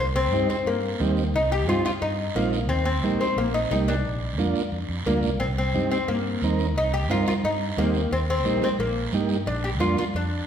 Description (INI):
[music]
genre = latin, cumbia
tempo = 177 BPM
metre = 4/4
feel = straight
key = C minor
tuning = A4 = 441 Hz
[part]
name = oud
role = melody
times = 0.0-10.5 s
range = Bb3 to G4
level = -26 LUFS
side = left 3 dB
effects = none
[part]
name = fingered electric bass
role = bass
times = 0.0-10.4 s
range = Bb1 to G2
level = -27 LUFS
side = equal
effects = none
[part]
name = combo organ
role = accompaniment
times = 0.3-10.0 s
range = Bb3 to Bb4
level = -29 LUFS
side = right 5 dB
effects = none
[part]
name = congas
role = percussion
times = 0.3-10.1 s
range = none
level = -31 LUFS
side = right 2 dB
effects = none
[part]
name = guiro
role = percussion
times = 0.3-10.5 s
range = none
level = -38 LUFS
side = right 5 dB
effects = none
[sound]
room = wet recital hall reverb, RT60 1.4 s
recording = recorded in a church or concert hall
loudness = -22 LUFS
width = side -8 dB against mid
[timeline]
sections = 0.0-10.5 A section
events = none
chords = 0.0 Cm7; 2.7 Eb; 4.1 Bb; 5.4 Cm7; 8.1 Eb; 9.5 Bb